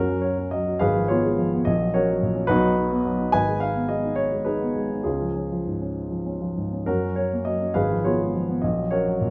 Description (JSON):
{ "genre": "classical, romantic character piece for solo piano", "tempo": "64-74 BPM (dotted quarters)", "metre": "6/8", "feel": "rubato", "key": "F# major", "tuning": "A4 = 438 Hz", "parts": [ { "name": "warm grand piano", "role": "solo", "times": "0.0-9.3 s", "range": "Ab1 to G#5", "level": "-24 LUFS", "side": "equal", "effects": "none" } ], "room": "moderate large studio reverb, RT60 1.2 s", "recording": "none", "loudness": "-24 LUFS", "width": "mono", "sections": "0.0-9.3 A section", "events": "none", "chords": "0.0 F#5; 0.8 Fdim/Ab; 1.7 F#/A#; 2.5 B; 3.3 G#m; 5.1 C#; 6.9 F#; 7.8 Fdim/Ab; 8.6 F#/A#" }